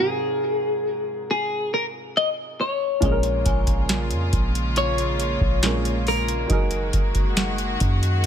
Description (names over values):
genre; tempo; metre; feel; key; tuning
contemporary R&B; 69 BPM; 4/4; straight; unclear; A4 = 441 Hz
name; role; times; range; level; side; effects
clean electric guitar; melody; 0.0-7.8 s; Ab4 to Eb5; -24 LUFS; left 2 dB; wide subtle chorus, ping-pong delay
dark baby grand piano; accompaniment; 0.0-8.3 s; Ab2 to Bb4; -31 LUFS; right 5 dB; none
warm studio string section; sustained chords; 3.0-8.3 s; Db3 to Gb4; -28 LUFS; left 1 dB; sidechain pumping
warm 808-style bass; bass; 3.0-8.3 s; Gb1 to Gb2; -24 LUFS; equal; none
booming analog drum machine; drums; 3.0-8.3 s; hi-hat, kick drum, snare drum; -22 LUFS; equal; none
synth chime; texture; 3.5-4.5 s; Ab5; -38 LUFS; equal; ensemble chorus, ping-pong delay
room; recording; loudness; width
digital ambience; none; -20 LUFS; side -9 dB against mid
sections
0.0-8.3 A section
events
none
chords
0.0 Ab13; 3.0 Bbm7; 6.5 Gb69